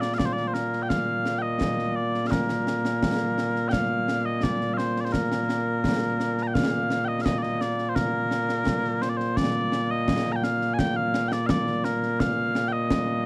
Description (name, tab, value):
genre	scottish traditional, Scottish pipe music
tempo	85 BPM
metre	2/4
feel	straight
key	Bb major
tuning	A4 = 440 Hz
part	mellow small bagpipes	melody	0.0-13.3 s	Bb2 to Bb5	-27 LUFS	equal	none
part	concert snare drum and concert bass drum	drums	0.0-13.1 s	none	-31 LUFS	equal	none
room	little or no reverb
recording	dry, close 1970s-style studio recording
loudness	-26 LUFS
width	mono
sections	0.0-6.5 A section; 6.5-13.3 A section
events	none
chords	none